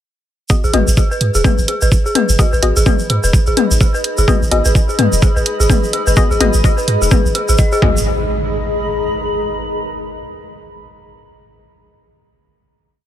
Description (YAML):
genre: minimal techno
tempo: 127 BPM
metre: 4/4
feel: swing 59% on 16ths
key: G# minor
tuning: A4 = 440 Hz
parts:
  - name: filtered dub chord stab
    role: stabs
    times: 0.5-8.0 s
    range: B3 to D#5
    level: -21 LUFS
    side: left 4 dB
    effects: chorus, ping-pong delay
  - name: electronic kick drum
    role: drums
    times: 0.5-7.9 s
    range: none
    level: -13 LUFS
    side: right 1 dB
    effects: overdrive
  - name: tube shaker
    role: percussion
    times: 0.5-8.0 s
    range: none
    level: -23 LUFS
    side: right 2 dB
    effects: none
  - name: granular cloud pad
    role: texture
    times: 1.8-9.9 s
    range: G#4 to B5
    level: -22 LUFS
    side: left 1 dB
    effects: built-in reverb, sidechain pumping
  - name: dark detuned synth bell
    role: riff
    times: 0.6-8.0 s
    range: G#4 to D#5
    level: -20 LUFS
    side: equal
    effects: chorus, sidechain pumping, ping-pong delay
  - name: punchy sub bass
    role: bass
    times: 0.6-8.0 s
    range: D#1 to G#2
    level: -15 LUFS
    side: equal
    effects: sidechain pumping
  - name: electronic hi-hat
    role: drums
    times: 0.7-7.5 s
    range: none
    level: -18 LUFS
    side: right 3 dB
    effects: none
  - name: electronic toms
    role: percussion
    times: 0.7-7.9 s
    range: none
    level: -19 LUFS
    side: left 8 dB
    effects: ping-pong delay
  - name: impact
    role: sound effects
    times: 7.8-9.7 s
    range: none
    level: -24 LUFS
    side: equal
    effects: none
room: little or no reverb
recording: none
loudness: -12 LUFS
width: side -11 dB against mid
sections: 0.5-8.1 groove; 8.1-9.9 final chord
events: fade-in on ambient pad 0.5-8.1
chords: 0.5 G#m7; 8.1 G#m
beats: | 0.50 0.97 1.45 1.92 | 2.39 2.86 3.33 3.81 | 4.28 4.75 5.22 5.70 | 6.17 6.64 7.11 7.59 | 8.06 8.53 9.00 9.48